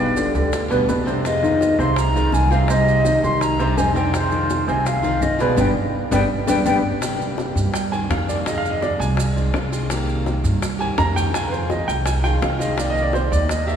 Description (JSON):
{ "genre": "latin, Cuban son and guajira", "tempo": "166 BPM", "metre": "4/4", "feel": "straight", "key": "C minor", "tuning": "A4 = 441 Hz", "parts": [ { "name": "silver concert flute", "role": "melody", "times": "0.0-6.8 s", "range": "C5 to C6", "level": "-23 LUFS", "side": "left 2 dB", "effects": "none" }, { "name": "picked plugged-in steel-string acoustic guitar", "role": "accompaniment", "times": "0.0-13.8 s", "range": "C3 to G4", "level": "-27 LUFS", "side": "left 1 dB", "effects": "none" }, { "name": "warm grand piano", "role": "arpeggios", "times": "0.0-13.8 s", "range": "B2 to Bb5", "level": "-22 LUFS", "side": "right 1 dB", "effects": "none" }, { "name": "upright bass", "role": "bass", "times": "0.0-13.8 s", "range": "G1 to G2", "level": "-22 LUFS", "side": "right 1 dB", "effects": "none" }, { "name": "bongos", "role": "percussion", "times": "0.2-13.7 s", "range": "none", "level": "-28 LUFS", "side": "left 3 dB", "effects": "none" }, { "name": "maracas", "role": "percussion", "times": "0.2-13.8 s", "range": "none", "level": "-36 LUFS", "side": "right 5 dB", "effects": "none" } ], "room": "wet cathedral reverb, RT60 4.8 s", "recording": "recorded in a church or concert hall, small room ambience", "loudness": "-17 LUFS", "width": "side -8 dB against mid", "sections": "0.0-7.0 A section; 7.0-13.8 B section", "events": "band accent 5.6-7.0; drum fill 5.9-7.0; grand piano solo 7.0-13.8", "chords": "0.0 G; 1.2 Fm7; 2.7 Cmadd9; 4.1 Fm7; 5.6 G; 7.0 Cm7; 8.5 Fm7; 9.9 Cm7; 11.3 Fm7; 12.8 Cm7" }